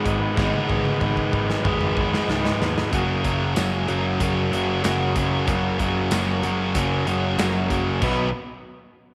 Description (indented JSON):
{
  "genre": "classic rock",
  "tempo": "94 BPM",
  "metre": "4/4",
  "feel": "straight",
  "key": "unclear",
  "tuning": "A4 = 440 Hz",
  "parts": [
    { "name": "picked swing-style acoustic guitar", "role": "accompaniment", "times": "0.0-8.3 s", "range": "F#2 to A#4", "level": "-35 LUFS", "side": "equal", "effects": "none" },
    { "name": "crunchy overdriven guitar", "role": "riff", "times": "0.0-8.3 s", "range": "B2 to B4", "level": "-29 LUFS", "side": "equal", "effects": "none" },
    { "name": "sludgy distorted guitar", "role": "riff", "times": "0.0-8.3 s", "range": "F#2 to B3", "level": "-26 LUFS", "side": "equal", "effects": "overdrive" },
    { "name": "picked electric bass", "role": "bass", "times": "0.1-8.3 s", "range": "F#1 to D#2", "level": "-31 LUFS", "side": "equal", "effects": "none" },
    { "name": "big rock drum kit", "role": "drums", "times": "0.1-8.2 s", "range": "crash cymbal, hi-hat, kick drum, snare drum, tambourine, toms", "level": "-30 LUFS", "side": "equal", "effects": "none" }
  ],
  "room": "moderate echo chamber reverb, RT60 2.1 s",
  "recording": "none",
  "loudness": "-22 LUFS",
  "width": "mono",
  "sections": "0.0-2.9 A section; 2.9-8.0 B section; 8.0-9.1 C section",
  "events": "drum fill 0.4-2.9",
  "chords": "0.0 G#m; 2.9 F#; 8.0 B",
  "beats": "| 0.37 1.01 1.65 2.29 | 2.93 3.56 4.20 4.84 | 5.48 6.11 6.75 7.39 | 8.02"
}